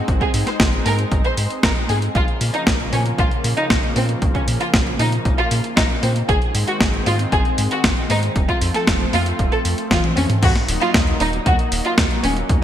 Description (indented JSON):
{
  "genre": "italo disco",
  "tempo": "116 BPM",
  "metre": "4/4",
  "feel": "straight",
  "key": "Bb minor",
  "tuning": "A4 = 440 Hz",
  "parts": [
    { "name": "lush unison pad", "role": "sustained chords", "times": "0.0-12.6 s", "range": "Db3 to F5", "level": "-26 LUFS", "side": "equal", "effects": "chorus" },
    { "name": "round analog bass", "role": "bass", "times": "0.1-12.6 s", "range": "Eb1 to Bb2", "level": "-22 LUFS", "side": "equal", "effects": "none" },
    { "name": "clean 12-bit digital drum machine", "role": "drums", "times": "0.1-12.6 s", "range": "crash cymbal, hi-hat, snare drum, toms", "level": "-21 LUFS", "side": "equal", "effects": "small room ambience, gated reverb" },
    { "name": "electronic kick drum", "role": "drums", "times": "0.1-12.6 s", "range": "none", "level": "-20 LUFS", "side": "equal", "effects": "small room ambience" },
    { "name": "warm studio violin section", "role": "melody", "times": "0.2-12.3 s", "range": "C4 to C5", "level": "-22 LUFS", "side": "equal", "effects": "ping-pong delay" }
  ],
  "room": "light reverb, digital ambience",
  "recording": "bright 1980s-style digital production",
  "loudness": "-16 LUFS",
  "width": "side -10 dB against mid",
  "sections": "0.0-10.4 A section; 10.4-12.6 B section",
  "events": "drum fill 9.9-10.4",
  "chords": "0.0 Ab; 2.1 Bbm; 6.3 Ab; 8.4 F; 10.4 Ebm"
}